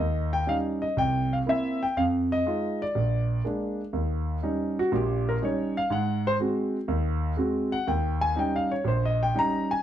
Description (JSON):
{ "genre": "solo jazz", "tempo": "122 BPM", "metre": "4/4", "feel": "swing 69% on 8ths", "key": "Eb mixolydian", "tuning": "A4 = 440 Hz", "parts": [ { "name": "warm concert grand piano", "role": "solo", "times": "0.0-9.8 s", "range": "Bb1 to Bb5", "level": "-24 LUFS", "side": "equal", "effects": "none" } ], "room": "moderate studio reverb, RT60 0.6 s", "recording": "dark, warm production", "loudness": "-24 LUFS", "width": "side -11 dB against mid", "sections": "0.0-3.9 A section; 3.9-9.8 B section", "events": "grand piano solo 3.9-9.8", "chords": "0.0 Eb7; 1.0 C7; 2.0 Fm7; 3.0 Bb7; 3.9 Eb7; 5.9 Ab7; 7.9 Eb7" }